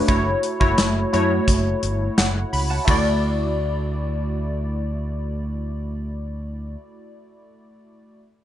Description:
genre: 1980s-style pop.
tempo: 86 BPM.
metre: 4/4.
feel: straight.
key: D major.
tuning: A4 = 439 Hz.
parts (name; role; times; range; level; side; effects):
glassy digital keys; accompaniment; 0.0-8.2 s; A3 to B5; -23 LUFS; left 1 dB; chorus.
fretless electric bass; bass; 0.1-6.8 s; F#1 to F#2; -25 LUFS; equal; none.
gated 80s drum kit; drums; 0.1-3.0 s; crash cymbal, hi-hat, kick drum, snare drum; -22 LUFS; equal; none.
room: moderate studio ambience, RT60 0.5 s.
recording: nothing above 10.9 kHz.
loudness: -20 LUFS.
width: side -11 dB against mid.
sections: 0.0-2.9 A section; 2.9-5.7 B section.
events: none.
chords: 0.1 F#m7; 2.9 Dadd9.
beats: | 0.09 0.78 1.48 2.18 | 2.88 3.57 4.27 4.97.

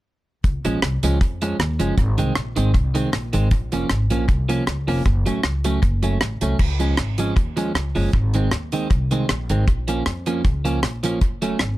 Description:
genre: ska.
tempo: 156 BPM.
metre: 4/4.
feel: swing 54% on 8ths.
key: Db major.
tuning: A4 = 440 Hz.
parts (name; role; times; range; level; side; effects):
upright bass; bass; 0.4-11.8 s; F1 to F2; -22 LUFS; equal; none.
deep reggae drum kit; drums; 0.4-11.7 s; crash cymbal, hi-hat, kick drum, rim click; -21 LUFS; equal; tape echo.
clean electric guitar; accompaniment; 0.6-11.6 s; Eb3 to Db4; -24 LUFS; right 2 dB; wide subtle chorus, plate reverb.
room: light reverb.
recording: none.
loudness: -18 LUFS.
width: side -16 dB against mid.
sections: 0.4-6.6 A section; 6.6-11.8 B section.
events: none.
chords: 0.4 Db; 2.0 Ab; 3.5 Bbm; 5.1 Gbm; 6.6 Db; 8.1 Ab; 9.7 Bbm; 11.2 Gbm.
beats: | 0.44 0.82 1.21 1.59 | 1.98 2.36 2.75 3.13 | 3.52 3.90 4.29 4.67 | 5.06 5.44 5.83 6.21 | 6.60 6.98 7.37 7.75 | 8.14 8.52 8.91 9.29 | 9.68 10.06 10.45 10.83 | 11.22 11.60.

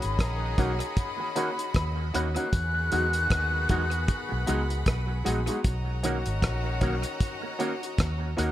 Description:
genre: lovers rock reggae.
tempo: 77 BPM.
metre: 4/4.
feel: swing 57% on 16ths.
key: B major.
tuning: A4 = 440 Hz.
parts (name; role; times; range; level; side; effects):
mellow silver concert flute; melody; 0.0-4.7 s; A#5 to F#6; -31 LUFS; left 1 dB; tape echo.
clear studio violin section; second line; 0.0-8.5 s; F#4 to B5; -39 LUFS; right 1 dB; none.
warm horn section; second line; 0.0-8.3 s; D#3 to G#4; -38 LUFS; left 5 dB; tape echo.
vintage muted fingered electric bass; bass; 0.0-8.5 s; G#1 to E2; -29 LUFS; equal; none.
cloth-damped thuddy drum kit; drums; 0.0-8.5 s; hi-hat, kick drum, rim click; -29 LUFS; equal; tape echo.
clear concert grand piano; accompaniment; 0.6-8.5 s; G#3 to F#4; -34 LUFS; left 2 dB; none.
electric guitar with an envelope filter; stabs; 0.6-8.5 s; D#3 to F#4; -36 LUFS; right 5 dB; analog chorus, tape echo.
room: light reverb, small room ambience.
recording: none.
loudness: -25 LUFS.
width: side -13 dB against mid.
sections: 0.0-8.5 A section.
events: none.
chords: 0.0 Bmaj9; 2.5 Emaj9; 5.6 Bmaj9.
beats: 0.19 0.96 1.75 | 2.52 3.31 4.08 4.87 | 5.64 6.42 7.21 7.99.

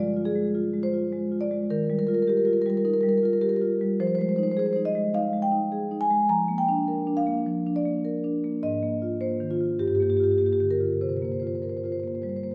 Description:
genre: classical, contemporary piece for solo marimba.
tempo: 104 BPM.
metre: 4/4.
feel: rubato.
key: unclear.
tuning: A4 = 440 Hz.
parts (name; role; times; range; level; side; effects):
marimba with soft mallets; solo; 0.0-12.5 s; G2 to Bb5; -25 LUFS; equal; none.
room: wet recital hall reverb, RT60 1.3 s.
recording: heard from further back in the room.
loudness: -25 LUFS.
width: mono.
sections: 0.0-12.5 A section.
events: none.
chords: 0.0 Fm; 1.7 Ebadd9; 4.0 Fm7; 6.3 Gm7/F; 8.6 Absus2; 9.8 Gm7; 11.0 C7sus4.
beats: 0.56 1.13 | 1.71 2.28 2.85 3.42 | 3.99 4.56 5.14 5.72 | 6.30 6.88 7.46 8.05 | 8.63 9.22 9.81 10.40 | 11.02 11.63 12.24.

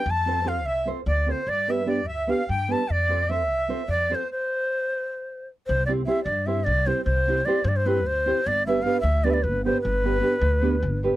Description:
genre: balkan folk, Balkan wedding band.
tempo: 301 BPM (eighths).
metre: 7/8.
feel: straight.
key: C major.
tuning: A4 = 440 Hz.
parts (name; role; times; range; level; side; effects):
bright reedy ney; melody; 0.0-11.0 s; B4 to A5; -25 LUFS; equal; none.
accordion; second line; 0.0-4.3 s; C5 to A5; -33 LUFS; right 2 dB; none.
upright bass; bass; 0.1-11.1 s; G1 to G2; -26 LUFS; equal; none.
nylon-string guitar; accompaniment; 0.3-11.2 s; B3 to C5; -25 LUFS; right 2 dB; none.
room: little or no reverb.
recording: dry, close 1970s-style studio recording.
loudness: -21 LUFS.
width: side -15 dB against mid.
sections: 0.0-5.7 A section; 5.7-11.2 B section.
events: stop 4.3-5.7.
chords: 0.1 F; 1.5 G; 2.9 F; 4.3 N.C.; 5.7 C; 8.5 G.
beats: | 0.07 0.28 0.48 0.68 0.88 1.08 1.28 | 1.48 1.69 1.89 2.09 2.29 2.49 2.69 | 2.89 3.09 3.29 3.49 3.69 3.89 4.09 | 4.29 4.49 4.69 4.89 5.09 5.29 5.49 | 5.69 5.89 6.09 6.29 6.49 6.69 6.88 | 7.08 7.28 7.48 7.68 7.88 8.07 8.27 | 8.47 8.67 8.86 9.06 9.26 9.46 9.65 | 9.85 10.05 10.24 10.44 10.64 10.83 11.03.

